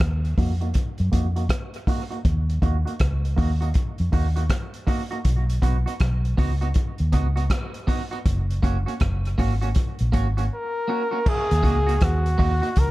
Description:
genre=dub reggae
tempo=80 BPM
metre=4/4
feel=swing 63% on 16ths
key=Eb minor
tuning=A4 = 441 Hz
part: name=vintage muted fingered electric bass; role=bass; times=0.0-12.9 s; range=Gb1 to Gb2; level=-22 LUFS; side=equal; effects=none
part: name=vintage drum kit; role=drums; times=0.0-12.9 s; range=crash cymbal, hi-hat, kick drum, rim click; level=-24 LUFS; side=equal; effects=none
part: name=clean electric guitar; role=accompaniment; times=0.4-12.7 s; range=Bb3 to Gb4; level=-30 LUFS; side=right 3 dB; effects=low-pass filter, dub echo
part: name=warm flugelhorn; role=melody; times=10.5-12.9 s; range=Gb4 to Bb4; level=-24 LUFS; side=equal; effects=dub echo
room=small room ambience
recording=dark, warm production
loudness=-20 LUFS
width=side -18 dB against mid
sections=0.0-11.3 A section; 11.3-12.9 B section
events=filter sweep on clean electric guitar 0.0-11.3; break 10.5-11.3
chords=0.0 Ebm; 5.3 B; 8.3 Gb; 11.3 Ebm

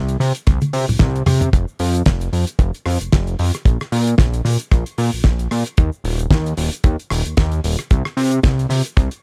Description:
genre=nu-disco, nu disco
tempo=113 BPM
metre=4/4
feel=swing 56% on 16ths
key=unclear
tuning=A4 = 444 Hz
part: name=fat analog bass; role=bass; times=0.0-9.1 s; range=Eb1 to C3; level=-20 LUFS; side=equal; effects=none
part: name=damped 70s drum kit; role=drums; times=0.1-9.2 s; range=hi-hat, rim click, shaker, snare drum, toms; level=-24 LUFS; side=equal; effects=none
part: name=kick drum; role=drums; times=0.5-9.1 s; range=none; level=-16 LUFS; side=equal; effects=none
room=little or no reverb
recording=none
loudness=-18 LUFS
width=mono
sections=0.0-9.2 A section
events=drum fill 0.5-1.5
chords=none

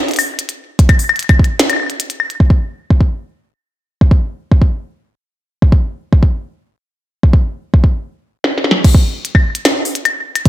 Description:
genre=IDM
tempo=149 BPM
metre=4/4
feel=straight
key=none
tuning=none
part: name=glitchy drum kit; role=drums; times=0.1-2.4, 8.4-10.5 s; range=claves, crash cymbal, hi-hat, snare drum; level=-15 LUFS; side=left 1 dB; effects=low-pass filter on hats, low-pass filter on perc, low-pass filter on snare, low-pass filter on cymbals, low-pass filter on room, analog delay
part: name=electronic kick drum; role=drums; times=0.8-10.5 s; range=none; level=-9 LUFS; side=equal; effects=none
room=little or no reverb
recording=echo-heavy mix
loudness=-12 LUFS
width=side -14 dB against mid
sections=0.0-2.4 A section; 2.4-8.8 B section; 8.8-10.5 A section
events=break 2.0-2.4; stop 8.0-8.8; drum fill 8.4-8.8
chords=none

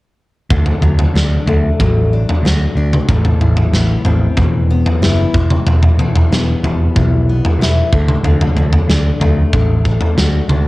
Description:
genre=quiet-loud alternative rock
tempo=93 BPM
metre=4/4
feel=straight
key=unclear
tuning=A4 = 440 Hz
part: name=picked steel-string acoustic guitar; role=arpeggios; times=0.5-10.7 s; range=E2 to F#4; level=-19 LUFS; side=left 4 dB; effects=cassette tape, analog delay
part: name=overdriven picked electric bass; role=bass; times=0.5-10.7 s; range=E1 to D2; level=-14 LUFS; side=equal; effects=none
part: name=big rock drum kit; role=drums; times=0.5-10.6 s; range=kick drum, snare drum, toms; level=-14 LUFS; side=equal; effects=cassette tape
room=little or no reverb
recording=home recording on cassette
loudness=-11 LUFS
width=side -20 dB against mid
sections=0.5-10.7 A section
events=none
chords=0.5 D; 3.1 Amadd9; 5.3 Em; 7.9 D

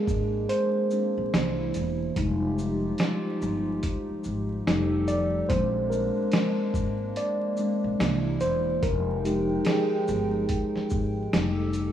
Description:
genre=lo-fi hip hop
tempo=72 BPM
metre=4/4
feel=swing 62% on 16ths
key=F dorian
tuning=A4 = 440 Hz
part: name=mellow tine electric piano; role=accompaniment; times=0.0-11.9 s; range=E3 to D5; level=-27 LUFS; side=equal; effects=low-pass filter
part: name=hollow soft pad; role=sustained chords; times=0.0-11.9 s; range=C3 to G5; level=-32 LUFS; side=right 1 dB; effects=chorus, low-pass filter
part: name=upright bass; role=bass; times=0.1-11.9 s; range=E1 to C2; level=-31 LUFS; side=equal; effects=none
part: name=lo-fi sampler-style drum kit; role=drums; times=0.1-11.9 s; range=hi-hat, kick drum, shaker, snare drum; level=-30 LUFS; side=equal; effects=none
room=wet plate reverb, RT60 2.6 s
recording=rough home demo mix, vinyl crackle, small room ambience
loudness=-24 LUFS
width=side -10 dB against mid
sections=0.0-11.9 A section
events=tine electric piano solo 0.0-11.9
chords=0.0 Bb9; 1.3 C7; 2.2 Fm9; 4.7 F9; 5.5 Bb9; 8.0 C7; 8.8 Fm9; 11.3 F9

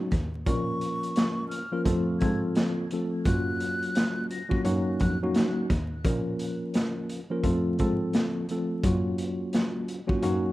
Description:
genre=hip hop, boom-bap hip-hop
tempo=86 BPM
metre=4/4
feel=swing 62% on 16ths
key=Bb harmonic minor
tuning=A4 = 440 Hz
part: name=mellow tine electric piano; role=accompaniment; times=0.0-10.5 s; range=F3 to Bb4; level=-28 LUFS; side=equal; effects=medium stereo tremolo
part: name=bright cello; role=bass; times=0.1-10.5 s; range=Eb2 to Bb2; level=-31 LUFS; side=equal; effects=none
part: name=crunchy breakbeat drum kit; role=drums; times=0.1-10.4 s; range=hi-hat, kick drum, snare drum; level=-28 LUFS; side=equal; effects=none
part: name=breathy mellow silver concert flute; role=melody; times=0.5-5.2 s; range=Db6 to Bb6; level=-35 LUFS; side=equal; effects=plate reverb, tape echo
room=light reverb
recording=rough home demo mix, vinyl crackle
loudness=-25 LUFS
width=side -17 dB against mid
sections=0.0-10.5 A section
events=none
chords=0.5 Bbm; 1.9 F; 3.3 Gbmaj7; 4.7 Ebm7; 6.0 Bbm; 7.4 F; 8.8 Gbmaj7

